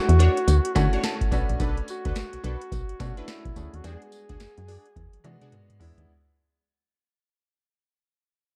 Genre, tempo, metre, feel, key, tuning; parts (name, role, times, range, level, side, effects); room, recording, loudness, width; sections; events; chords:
R&B, new jack swing; 107 BPM; 4/4; swing 62% on 16ths; A4 = 441 Hz
mellow duduk; melody; 0.0-5.5 s; E4 to G#4; -33 LUFS; equal
clear grand piano; accompaniment; 0.0-6.1 s; G3 to A5; -36 LUFS; equal
solid FM bass; bass; 0.1-6.1 s; Bb1 to E3; -24 LUFS; equal
booming analog drum machine; drums; 0.1-6.1 s; hi-hat, kick drum, snare drum, tambourine, toms; -32 LUFS; equal; overdrive
funky polysynth comp; stabs; 0.2-5.5 s; D4 to C#5; -38 LUFS; equal; chorus
cowbell; percussion; 0.2-5.7 s; -45 LUFS; equal
digital ambience; dark, warm production; -24 LUFS; mono
0.0-6.1 A section
fade-out 0.0-6.1; grand piano fill 0.5-1.6; drum fill 5.0-6.1
0.0 Dmaj7; 1.3 Bm7; 3.8 E9